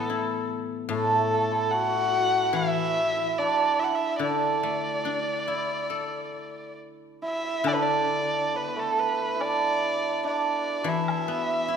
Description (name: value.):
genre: chinese traditional, Chinese chamber ensemble.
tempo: 71 BPM.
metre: 4/4.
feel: uneven beats, rubato.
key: D gong mode.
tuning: A4 = 440 Hz.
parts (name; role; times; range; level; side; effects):
dark erhu; melody; 0.0-11.8 s; A4 to F#5; -27 LUFS; left 1 dB; none.
guzheng; accompaniment; 0.0-11.8 s; A2 to A4; -31 LUFS; left 6 dB; none.
hammered dulcimer; second line; 0.9-11.8 s; A3 to F#4; -27 LUFS; right 5 dB; none.
woodblock; percussion; 7.7-11.3 s; none; -37 LUFS; left 5 dB; none.
room: moderate scoring stage reverb, RT60 1.7 s.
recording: none.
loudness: -24 LUFS.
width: side -7 dB against mid.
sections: 0.0-7.7 A section; 7.7-11.8 B section.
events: none.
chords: none.